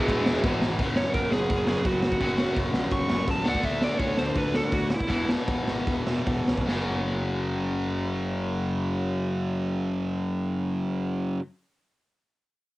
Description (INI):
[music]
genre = punk rock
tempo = 143-170 BPM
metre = 4/4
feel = straight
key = unclear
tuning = A4 = 440 Hz
[part]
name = bluesy overdriven lead guitar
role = melody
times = 0.0-5.3 s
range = G#3 to C#6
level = -28 LUFS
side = right 1 dB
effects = distortion, cassette tape
[part]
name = cranked stack guitar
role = riff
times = 0.0-11.4 s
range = E2 to D4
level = -28 LUFS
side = left 2 dB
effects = overdrive
[part]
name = tight distorted guitar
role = riff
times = 0.0-11.4 s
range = E2 to D4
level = -34 LUFS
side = right 5 dB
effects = distortion
[part]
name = tight distorted guitar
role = riff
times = 0.0-0.8 s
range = E2 to E3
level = -33 LUFS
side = right 1 dB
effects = none
[part]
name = fuzz picked electric bass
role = bass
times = 0.0-11.4 s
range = E1 to D2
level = -34 LUFS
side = equal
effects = overdrive
[part]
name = raw garage drum kit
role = drums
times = 0.0-6.8 s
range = hi-hat, kick drum, ride cymbal, snare drum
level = -27 LUFS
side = equal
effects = cassette tape
[sound]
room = little or no reverb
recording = home recording on cassette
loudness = -24 LUFS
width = side -18 dB against mid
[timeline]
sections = 0.8-6.7 A section; 6.7-10.0 B section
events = drum fill 0.4-0.8; lead electric guitar solo 0.8-6.7; slowing down 3.6-6.7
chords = 0.0 E; 0.8 F#5; 3.5 D5; 5.1 E5; 6.7 F#5